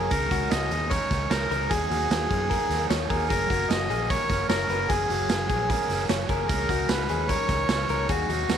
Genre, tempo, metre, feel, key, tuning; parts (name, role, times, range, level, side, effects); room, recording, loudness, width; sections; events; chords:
jangly indie pop; 150 BPM; 4/4; straight; F# major; A4 = 440 Hz
melodica; melody; 0.0-8.6 s; F#4 to D#5; -27 LUFS; right 1 dB; slapback echo
crunchy overdriven guitar; accompaniment; 0.0-8.6 s; F#2 to D#4; -33 LUFS; right 12 dB
direct-recorded clean electric guitar; arpeggios; 0.0-8.6 s; F#4 to C#5; -31 LUFS; left 12 dB; slapback echo
vintage muted fingered electric bass; bass; 0.0-8.6 s; F#1 to F#2; -31 LUFS; left 1 dB
raw garage drum kit; drums; 0.1-8.6 s; hi-hat, kick drum, snare drum; -28 LUFS; right 3 dB
light reverb, small room ambience; 1960s-style stereo with parts hard left and right; -22 LUFS; side -8 dB against mid
0.0-8.6 A section
0.1 C#sus2; 1.7 D#m; 3.3 F#; 6.5 C#sus2